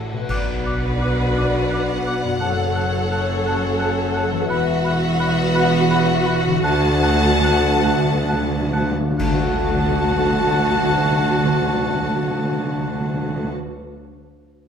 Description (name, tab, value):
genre	cinematic, emotional film score for orchestra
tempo	43-58 BPM (dotted quarters)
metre	6/8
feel	rubato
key	D major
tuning	A4 = 439 Hz
part	warm studio violin section	melody	0.0-13.5 s	F#5 to A5	-27 LUFS	left 3 dB	none
part	warm studio violin section	second line	0.0-13.5 s	F#4 to F#5	-29 LUFS	left 2 dB	none
part	rich studio viola section	accompaniment	0.0-13.5 s	F#4 to B4	-27 LUFS	right 2 dB	none
part	concert harp	arpeggios	0.0-13.8 s	F#2 to F#5	-28 LUFS	left 8 dB	none
part	clear studio cello section	bass	0.0-13.5 s	D2 to B2	-25 LUFS	right 2 dB	none
part	warm studio double bass section	bass	0.0-13.5 s	E1 to D2	-24 LUFS	right 2 dB	none
part	clear oboe	second line	0.3-13.5 s	F#5	-30 LUFS	right 1 dB	none
part	mellow hollow silver concert flute	second line	0.3-13.5 s	A5 to D6	-29 LUFS	left 1 dB	none
part	dark French horn section	sustained chords	0.3-13.5 s	A3 to A4	-26 LUFS	left 2 dB	none
part	clash cymbals and concert bass drum	percussion	0.3-1.7, 9.2-10.9 s	none	-30 LUFS	equal	none
part	timpani	percussion	6.6-13.5 s	D3	-24 LUFS	equal	none
room	wet scoring stage reverb, RT60 1.7 s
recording	none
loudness	-17 LUFS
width	side -7 dB against mid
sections	0.3-9.2 A section; 9.2-14.5 B section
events	band accent 0.3-1.0, 9.2-10.1; slowing down 3.5-9.2; timpani fill 6.6-9.2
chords	0.3 Bm; 2.4 F#m; 4.5 Esus2; 6.6 D